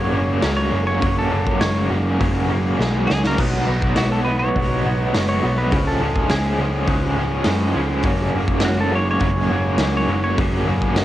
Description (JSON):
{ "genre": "garage rock duo or trio", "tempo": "102 BPM", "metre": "4/4", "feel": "straight", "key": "F# major", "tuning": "A4 = 440 Hz", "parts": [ { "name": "clean lap steel guitar", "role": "melody", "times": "0.0-10.4 s", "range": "F#4 to C#5", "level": "-25 LUFS", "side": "equal", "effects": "cassette tape" }, { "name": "raw garage guitar", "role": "riff", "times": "0.0-11.0 s", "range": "F#2 to D#4", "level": "-21 LUFS", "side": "equal", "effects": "overdrive, tremolo, cassette tape" }, { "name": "hollow-body short-scale picked electric bass", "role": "bass", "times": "0.0-11.0 s", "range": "F#1 to F#2", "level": "-23 LUFS", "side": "equal", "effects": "none" }, { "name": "raw garage drum kit", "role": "drums", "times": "0.4-11.0 s", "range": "crash cymbal, hi-hat, kick drum, snare drum", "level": "-22 LUFS", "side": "equal", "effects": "cassette tape" } ], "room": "small room ambience", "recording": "home recording on cassette", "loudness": "-17 LUFS", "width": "side -13 dB against mid", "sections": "0.0-11.0 A section", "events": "drum fill 2.8-3.4", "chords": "0.0 F#; 3.4 B; 5.7 C#; 8.0 F#" }